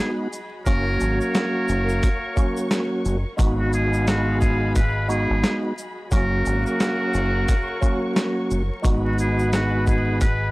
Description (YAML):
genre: hip hop, boom-bap hip-hop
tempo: 88 BPM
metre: 4/4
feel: swing 59% on 16ths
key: G# dorian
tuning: A4 = 439 Hz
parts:
  - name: trumpet with metal mute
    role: melody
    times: 0.0-10.5 s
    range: F#4 to B4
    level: -28 LUFS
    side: equal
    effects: high-pass filter, low-pass filter, analog delay
  - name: percussive tonewheel organ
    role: accompaniment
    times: 0.0-10.3 s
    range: F#3 to F#4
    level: -24 LUFS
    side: right 1 dB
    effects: fast rotary speaker, cassette tape, high-pass filter, low-pass filter
  - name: dark symphonic string section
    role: sustained chords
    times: 0.0-10.5 s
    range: F#4 to C#6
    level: -34 LUFS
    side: left 1 dB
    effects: high-pass filter, low-pass filter
  - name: warm horn section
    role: stabs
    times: 0.0-10.5 s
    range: B2 to E#5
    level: -33 LUFS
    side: equal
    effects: high-pass filter, low-pass filter, analog delay
  - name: dusty soul sampler-style drum kit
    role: drums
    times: 0.3-10.4 s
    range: hi-hat, kick drum, shaker, snare drum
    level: -21 LUFS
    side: equal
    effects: none
  - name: tube shaker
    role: percussion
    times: 0.3-10.4 s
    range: none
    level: -42 LUFS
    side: left 3 dB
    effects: none
  - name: deep dub fingered electric bass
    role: bass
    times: 0.7-10.5 s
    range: F#1 to G#1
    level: -24 LUFS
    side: equal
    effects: transformer saturation
room: little or no reverb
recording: dry, gritty hardware recording, vinyl crackle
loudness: -19 LUFS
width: side -21 dB against mid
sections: 0.0-10.5 A section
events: none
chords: 0.0 G#m7; 0.7 F#; 3.4 G#m7; 6.1 F#; 8.8 G#m7